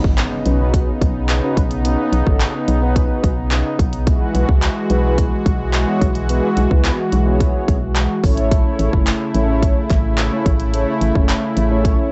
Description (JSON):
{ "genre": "dance-pop", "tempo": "108 BPM", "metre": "4/4", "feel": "straight", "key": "E major", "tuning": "A4 = 441 Hz", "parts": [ { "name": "warm analog pad", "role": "sustained chords", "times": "0.0-12.1 s", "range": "C#3 to F#4", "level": "-24 LUFS", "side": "equal", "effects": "chorus, sidechain pumping" }, { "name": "organ-like FM bass", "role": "bass", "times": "0.0-12.0 s", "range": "F#1 to C#2", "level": "-21 LUFS", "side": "equal", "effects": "sidechain pumping" }, { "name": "house drum kit", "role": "drums", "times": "0.0-12.0 s", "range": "handclaps, hi-hat, kick drum", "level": "-20 LUFS", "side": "equal", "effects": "overdrive, cassette tape" }, { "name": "impact", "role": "sound effects", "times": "0.0-1.8 s", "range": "none", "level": "-38 LUFS", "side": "equal", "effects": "none" }, { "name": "mellow synth brass", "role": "accompaniment", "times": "0.5-12.1 s", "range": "A3 to C#5", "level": "-25 LUFS", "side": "equal", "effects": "chorus, sidechain pumping" }, { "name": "group handclap", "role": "percussion", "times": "9.1-11.4 s", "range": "none", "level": "-35 LUFS", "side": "equal", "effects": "none" } ], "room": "light reverb", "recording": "home recording on cassette, nothing above 8.0 kHz", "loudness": "-17 LUFS", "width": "mono", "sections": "0.0-12.1 A section", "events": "impact 0.0-1.8", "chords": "0.0 Badd9; 4.1 Eadd9/B; 8.2 A" }